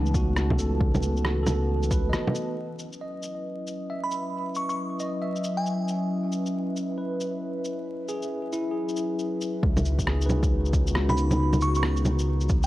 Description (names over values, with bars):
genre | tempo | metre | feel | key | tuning
future garage | 136 BPM | 4/4 | swing 63% on 16ths | C# minor | A4 = 440 Hz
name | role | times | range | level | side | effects
bell-like tine electric piano | accompaniment | 0.0-12.7 s | A3 to E5 | -33 LUFS | right 1 dB | medium stereo tremolo, sidechain pumping, tape echo
warbly tape-like pad | sustained chords | 0.0-12.7 s | D#3 to D#6 | -31 LUFS | left 1 dB | chorus, built-in reverb, sidechain pumping
dark detuned saw bass | bass | 0.0-2.1, 9.6-12.7 s | C#2 | -25 LUFS | equal | tube saturation
electronic kick drum | drums | 0.1-2.0, 9.6-12.6 s | none | -26 LUFS | equal | overdrive
electronic shaker, cabasa, rim click and bongos | drums | 0.1-12.7 s | none | -29 LUFS | equal | none
glassy synth bell | melody | 4.0-6.2, 11.1-12.7 s | G#5 to C#6 | -32 LUFS | right 2 dB | chorus, tremolo, tape echo
room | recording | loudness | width
moderate recital hall reverb, RT60 1.3 s | vinyl crackle | -24 LUFS | side -16 dB against mid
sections
0.0-2.6 A section; 2.6-9.6 B section; 9.6-12.7 C section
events
break 2.1-2.6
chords
0.0 Asus2/C#; 2.6 C#m11; 9.6 C#9sus4